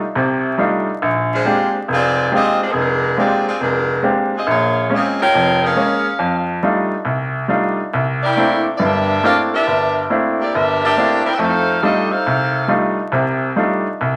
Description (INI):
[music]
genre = jazz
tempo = 139 BPM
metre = 4/4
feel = swing 67% on 8ths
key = unclear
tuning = A4 = 440 Hz
[part]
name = clear baby grand piano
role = accompaniment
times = 0.0-14.2 s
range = F1 to G4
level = -19 LUFS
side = equal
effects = none
[part]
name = clear saxophone section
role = melody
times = 1.3-12.7 s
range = Ab3 to G5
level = -20 LUFS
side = equal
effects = none
[sound]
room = wet large studio reverb, RT60 0.9 s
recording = vinyl crackle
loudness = -17 LUFS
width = mono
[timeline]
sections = 0.0-14.2 A section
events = none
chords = 0.0 F13; 1.0 Bb13; 4.5 Bbm7; 6.2 F13; 7.9 C13; 11.4 F13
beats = 0.15 0.58 | 1.01 1.45 1.88 2.31 | 2.74 3.17 3.60 4.04 | 4.47 4.90 5.33 5.76 | 6.20 6.63 7.06 7.49 | 7.92 8.36 8.79 9.22 | 9.65 10.09 10.52 10.95 | 11.38 11.81 12.25 12.68 | 13.11 13.54 13.98